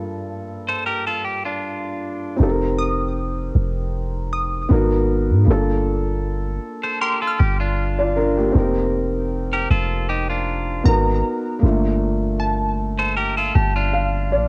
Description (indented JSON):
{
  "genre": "R&B",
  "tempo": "78 BPM",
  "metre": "4/4",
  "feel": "swing 54% on 16ths",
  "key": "G minor",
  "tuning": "A4 = 435 Hz",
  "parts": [
    { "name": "felt-muted upright piano", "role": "accompaniment", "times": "0.0-14.5 s", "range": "G2 to A5", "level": "-25 LUFS", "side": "equal", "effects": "cassette tape" },
    { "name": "clean electric guitar", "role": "arpeggios", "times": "0.7-14.5 s", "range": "D4 to C5", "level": "-25 LUFS", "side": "equal", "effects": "cassette tape, analog delay" },
    { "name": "clean 808-style bass", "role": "bass", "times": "2.4-14.5 s", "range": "F1 to Ab2", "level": "-23 LUFS", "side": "equal", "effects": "none" },
    { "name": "glassy wavetable pluck", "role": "texture", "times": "2.8-14.1 s", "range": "A5 to F6", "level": "-28 LUFS", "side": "equal", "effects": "chorus, cassette tape, analog delay" }
  ],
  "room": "light reverb",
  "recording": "home recording on cassette",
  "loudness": "-21 LUFS",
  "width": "mono",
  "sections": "0.0-2.4 A section; 2.4-14.5 B section",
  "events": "felt piano fill 13.2-14.5",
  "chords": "0.0 Gm9; 2.4 F9sus4; 4.7 Abm9; 5.5 Gm9; 8.6 F9sus4; 10.9 Abm9; 11.6 Gm9"
}